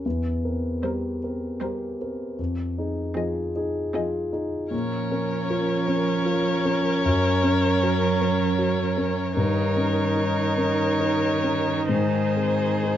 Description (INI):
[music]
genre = classical, slow romantic movement for piano quintet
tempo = 77 BPM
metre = 3/4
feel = rubato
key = unclear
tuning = A4 = 440 Hz
[part]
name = dark grand piano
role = accompaniment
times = 0.0-13.0 s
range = E2 to Bb4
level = -25 LUFS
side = left 1 dB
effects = none
[part]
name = dark violin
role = melody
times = 0.8-13.0 s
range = C5 to Eb5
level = -28 LUFS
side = left 4 dB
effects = none
[part]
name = rich cello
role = second line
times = 0.8-13.0 s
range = Eb3 to G3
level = -29 LUFS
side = right 8 dB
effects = none
[part]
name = rich viola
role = accompaniment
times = 0.8-13.0 s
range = C4 to Eb4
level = -30 LUFS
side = right 4 dB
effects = none
[part]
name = rich violin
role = second line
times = 0.9-13.0 s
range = Ab4 to Bb4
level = -30 LUFS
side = left 1 dB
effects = none
[sound]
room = moderate large studio reverb, RT60 0.9 s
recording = dark, warm production, nothing above 7.7 kHz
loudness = -22 LUFS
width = side -11 dB against mid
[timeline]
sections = 0.0-13.0 A section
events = none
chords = 0.0 C7/E; 2.4 Fm7; 4.7 Bbm; 7.1 Gb; 9.4 Eb7/G; 11.9 Ab